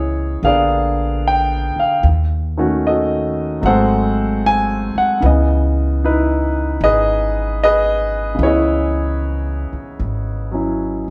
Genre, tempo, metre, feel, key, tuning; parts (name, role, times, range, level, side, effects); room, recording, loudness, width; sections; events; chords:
jazz ballad; 75 BPM; 4/4; swing 66% on 8ths; C# minor; A4 = 439 Hz
clear concert grand piano; accompaniment; 0.0-11.1 s; C#3 to G#5; -19 LUFS; equal
upright bass; bass; 0.0-11.1 s; G#1 to D#2; -22 LUFS; equal
moderate large studio reverb, RT60 1.0 s; band playing live in one room; -17 LUFS; mono
0.0-11.1 A section
0.4 A#7b9; 2.0 D#m7b5; 3.6 G#7b9; 5.2 C#m9